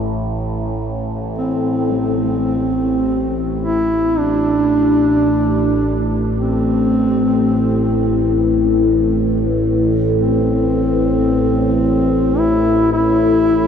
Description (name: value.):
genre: dark ambient drone.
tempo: 55 BPM.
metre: 4/4.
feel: straight.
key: A minor.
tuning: A4 = 440 Hz.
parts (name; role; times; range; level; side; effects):
overtone-sweeping drone; drone; 0.0-13.7 s; A1 to A2; -16 LUFS; left 1 dB; chorus, built-in reverb.
mellow duduk; melody; 1.4-13.7 s; C4 to E4; -17 LUFS; equal; tape echo.
room: wet huge ambient reverb, RT60 7.7 s.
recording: dark, warm production.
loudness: -14 LUFS.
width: side -7 dB against mid.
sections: 0.0-1.9 A section; 1.9-13.7 B section.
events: none.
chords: none.